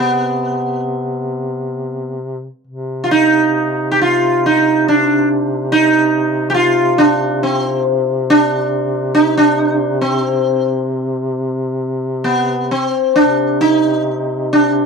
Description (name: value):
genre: caucasian folk, Caucasian lament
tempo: 63-72 BPM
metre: 3/4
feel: rubato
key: C harmonic minor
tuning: A4 = 440 Hz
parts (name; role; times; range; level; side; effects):
- sitar; melody; 0.0-14.9 s; B3 to G4; -14 LUFS; right 1 dB; none
- warm duduk; drone; 0.0-14.9 s; C3; -20 LUFS; left 1 dB; none
room: light reverb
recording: dry, close 1970s-style studio recording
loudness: -13 LUFS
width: side -5 dB against mid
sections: 0.0-13.2 A section; 13.2-14.9 B section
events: none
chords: none